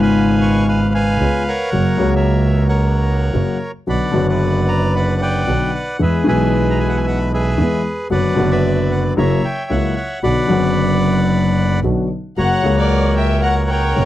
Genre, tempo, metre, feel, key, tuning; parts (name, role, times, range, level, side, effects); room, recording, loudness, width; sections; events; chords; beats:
tango; 113 BPM; 4/4; rubato; B harmonic minor; A4 = 441 Hz
bandoneon; melody; 0.0-14.1 s; G#4 to C#6; -21 LUFS; right 1 dB
warm concert grand piano; accompaniment; 0.0-14.1 s; F#1 to G#4; -17 LUFS; left 2 dB
clear double bass; bass; 0.0-14.1 s; F#1 to E2; -18 LUFS; right 2 dB
rich chamber violin section; second line; 12.4-14.1 s; C#5 to F#5; -21 LUFS; left 2 dB
little or no reverb; dry, close 1970s-style studio recording; -14 LUFS; side -13 dB against mid
0.0-14.1 A section
0.0 C#7; 1.7 F#; 3.9 Bm; 6.0 E; 8.1 Bm/F#; 9.2 F#7; 10.2 Bm; 12.4 F#
0.14 0.67 1.20 | 1.73 2.26 2.79 3.33 | 3.87 4.41 4.94 5.47 | 6.00 6.53 7.05 7.58 | 8.11 8.64 9.17 9.70 | 10.22 10.76 11.29 11.83 | 12.37 12.90 13.44 13.97